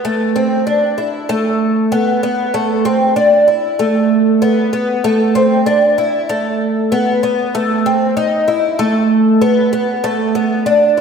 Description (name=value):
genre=dream pop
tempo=96 BPM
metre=4/4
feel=straight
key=unclear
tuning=A4 = 441 Hz
part: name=picked twelve-string acoustic guitar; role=solo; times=0.0-11.0 s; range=A3 to E4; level=-12 LUFS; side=equal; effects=analog chorus, tape echo
room=wet concert hall reverb, RT60 1.7 s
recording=none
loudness=-12 LUFS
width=side -6 dB against mid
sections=0.0-1.3 A section; 1.3-11.0 B section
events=none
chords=none